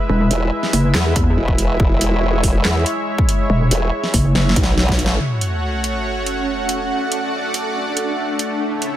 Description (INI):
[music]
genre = heavy wobble dubstep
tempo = 141 BPM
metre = 4/4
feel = half-time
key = unclear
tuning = A4 = 439 Hz
[part]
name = supersaw pad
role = sustained chords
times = 0.0-9.0 s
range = C#3 to F#5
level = -22 LUFS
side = equal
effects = sidechain pumping, low-pass filter
[part]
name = pulsing pluck wobble bass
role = bass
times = 0.1-4.5 s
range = E1 to E2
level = -15 LUFS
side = equal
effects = chorus, overdrive
[part]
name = formant-sweep wobble bass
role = bass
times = 0.3-5.2 s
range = E1 to E2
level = -18 LUFS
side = equal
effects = chorus, overdrive
[part]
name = dubstep drum kit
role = drums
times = 0.3-8.9 s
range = handclaps, hi-hat, snare drum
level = -21 LUFS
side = right 1 dB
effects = none
[part]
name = electronic kick drum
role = drums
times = 1.2-5.0 s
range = none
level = -18 LUFS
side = equal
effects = none
[part]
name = sub drop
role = sound effects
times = 5.2-6.9 s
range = none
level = -24 LUFS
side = equal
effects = none
[part]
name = granular cloud pad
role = texture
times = 6.0-9.0 s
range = C#4 to A5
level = -23 LUFS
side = right 2 dB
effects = built-in reverb, sidechain pumping
[sound]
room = light reverb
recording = none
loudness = -16 LUFS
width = side -12 dB against mid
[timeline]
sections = 0.0-5.2 A section; 5.2-9.0 B section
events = drop 0.0-5.2; drum fill 4.4-5.2; band accent 5.1; impact 5.2-6.9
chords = 0.0 E; 5.2 F#m; 6.9 D